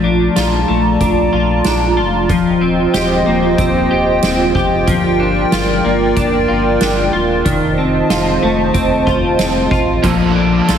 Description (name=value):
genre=dream pop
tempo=93 BPM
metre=4/4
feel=straight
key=Bb major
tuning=A4 = 441 Hz
part: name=hollow soft pad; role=sustained chords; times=0.0-10.8 s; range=F4 to Bb5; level=-16 LUFS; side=right 2 dB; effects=chorus
part: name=clean electric guitar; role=arpeggios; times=0.0-10.8 s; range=Eb3 to G4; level=-16 LUFS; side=left 3 dB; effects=analog chorus, digital delay
part: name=sub bass with octave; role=bass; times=0.0-10.8 s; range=Eb1 to Bb1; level=-22 LUFS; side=equal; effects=none
part: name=soft-mallet drum kit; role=drums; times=0.4-10.8 s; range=hi-hat, kick drum, snare drum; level=-20 LUFS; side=right 1 dB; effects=none
part: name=raw garage guitar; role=accompaniment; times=10.0-10.8 s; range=Bb2 to A4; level=-19 LUFS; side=right 6 dB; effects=overdrive, tremolo, analog chorus
room=moderate plate reverb, RT60 2.5 s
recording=heavily compressed radio sound, multiband compression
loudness=-12 LUFS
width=side -8 dB against mid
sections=0.0-10.8 A section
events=none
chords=0.0 Bbmaj7; 2.3 Eb69; 4.9 Gm7; 7.5 F7; 10.0 Bbmaj7